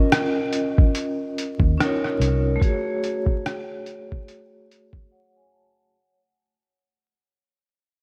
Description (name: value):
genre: lo-fi hip hop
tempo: 72 BPM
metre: 4/4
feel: swing 58% on 16ths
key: unclear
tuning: A4 = 439 Hz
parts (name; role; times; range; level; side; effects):
- vibraphone with hard mallets; accompaniment; 0.0-6.2 s; A3 to Ab5; -27 LUFS; equal; low-pass filter
- lo-fi sampler-style drum kit; drums; 0.1-5.1 s; hi-hat, kick drum, rim click; -23 LUFS; equal; overdrive
- vintage muted fingered electric bass; bass; 1.6-2.6 s; C2 to Eb2; -24 LUFS; equal; none
room: moderate lush hall reverb, RT60 2.7 s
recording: dreamy mix soaked in reverb, vinyl crackle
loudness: -22 LUFS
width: mono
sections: 0.0-5.9 A section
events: fade-out 0.0-5.9; filter sweep on vibraphone 0.0-5.9; break 2.6-5.9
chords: 0.0 Db69; 2.6 Gbmadd9